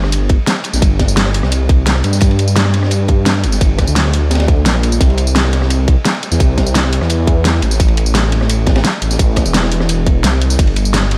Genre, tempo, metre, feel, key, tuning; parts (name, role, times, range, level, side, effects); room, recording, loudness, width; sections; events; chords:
liquid drum and bass; 172 BPM; 4/4; straight; G dorian; A4 = 440 Hz
dark detuned saw bass; bass; 0.0-11.2 s; E1 to G2; -16 LUFS; equal
crunchy breakbeat drum kit; drums; 0.0-11.2 s; ride cymbal, snare drum; -25 LUFS; equal; high-pass filter on cymbals, high-pass filter on snare, high-pass filter on room
pop drum kit; drums; 0.0-11.2 s; hi-hat, ride cymbal, rim click, snare drum, tambourine; -20 LUFS; equal
electronic kick drum; drums; 0.3-10.7 s; -15 LUFS; equal
light reverb, studio ambience; -13 LUFS; mono
0.0-11.2 A section